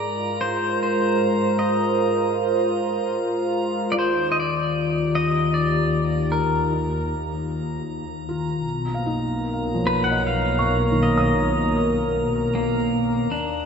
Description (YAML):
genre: ambient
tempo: 77 BPM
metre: 3/4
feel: straight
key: Eb major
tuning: A4 = 440 Hz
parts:
  - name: pedal steel guitar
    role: melody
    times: 0.0-13.7 s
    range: A#3 to F#5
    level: -25 LUFS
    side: left 1 dB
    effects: analog delay
  - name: warm analog pad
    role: sustained chords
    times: 0.0-13.7 s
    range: B2 to Db5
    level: -22 LUFS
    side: equal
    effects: chorus
  - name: warm studio double bass section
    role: bass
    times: 0.0-13.7 s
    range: B1 to Ab2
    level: -30 LUFS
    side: right 1 dB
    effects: tube saturation
  - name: drifting glass-harmonics texture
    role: texture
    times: 0.0-13.7 s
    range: Bb5 to Eb6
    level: -33 LUFS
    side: equal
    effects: chorus, built-in reverb
  - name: felt-muted upright piano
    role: arpeggios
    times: 6.7-13.3 s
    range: D#3 to D#6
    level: -28 LUFS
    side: equal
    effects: analog delay
room: wet plate reverb, RT60 3.1 s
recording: echo-heavy mix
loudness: -20 LUFS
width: side -6 dB against mid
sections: 0.0-4.0 A section; 4.0-13.3 B section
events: fade-out on double bass section 0.0-4.0; filter sweep on analog synth pad 0.0-4.0, 4.0-13.3; fade-in on felt piano 4.0-13.3; fade-in on double bass section 4.0-13.3; fade-in on synth texture 4.0-13.3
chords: 0.0 Ab6; 4.0 Ebmaj7; 8.6 Bmaj7